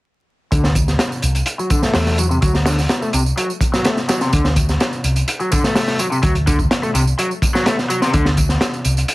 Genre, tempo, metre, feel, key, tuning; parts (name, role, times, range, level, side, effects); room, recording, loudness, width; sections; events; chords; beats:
breakbeat, breaks; 126 BPM; 4/4; straight; A4 = 440 Hz
overdriven electric guitar; riff; 0.5-8.3 s; C3 to A3; -21 LUFS; left 1 dB; tube saturation, vintage 12-bit sampler grit, low-pass filter, ping-pong delay
picked electric bass; bass; 0.5-9.0 s; C2 to E2; -18 LUFS; equal
crunchy breakbeat drum kit; drums; 0.5-9.1 s; hi-hat, kick drum, snare drum; -18 LUFS; equal
tambourine; drums; 0.5-9.1 s; -29 LUFS; right 5 dB; overdrive
light reverb; vinyl crackle; -15 LUFS; side -20 dB against mid
0.5-9.1 A section
filter sweep on overdriven electric guitar 0.5-9.1
0.5 D7
| 0.52 1.00 1.48 1.95 | 2.43 2.90 3.38 3.86 | 4.33 4.81 5.28 5.76 | 6.24 6.71 7.19 7.67 | 8.14 8.62 9.09